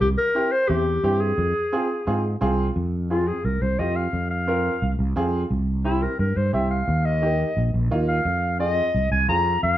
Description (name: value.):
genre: latin, cumbia.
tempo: 175 BPM.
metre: 4/4.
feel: straight.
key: F minor.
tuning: A4 = 442 Hz.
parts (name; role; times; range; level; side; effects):
warm clarinet; melody; 0.0-9.8 s; E4 to Bb5; -23 LUFS; left 1 dB; none.
sustaining fretless electric bass; bass; 0.0-9.8 s; Bb1 to Ab2; -23 LUFS; equal; none.
clear upright piano; accompaniment; 0.3-9.5 s; Bb3 to Bb4; -27 LUFS; right 2 dB; none.
room: moderate studio reverb, RT60 0.8 s.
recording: minimal, uncompressed stereo recording.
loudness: -20 LUFS.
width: side -13 dB against mid.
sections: 0.0-2.8 A section; 2.8-9.8 B section.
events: clarinet solo 2.8-9.8.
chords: 0.0 C7; 1.4 Fm; 5.5 C; 6.9 Eb; 8.3 Fm.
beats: | 0.01 0.36 0.70 1.04 | 1.39 1.73 2.07 2.42 | 2.76 3.10 3.45 3.79 | 4.13 4.48 4.82 5.16 | 5.51 5.85 6.20 6.54 | 6.88 7.23 7.57 7.91 | 8.26 8.60 8.95 9.29 | 9.63.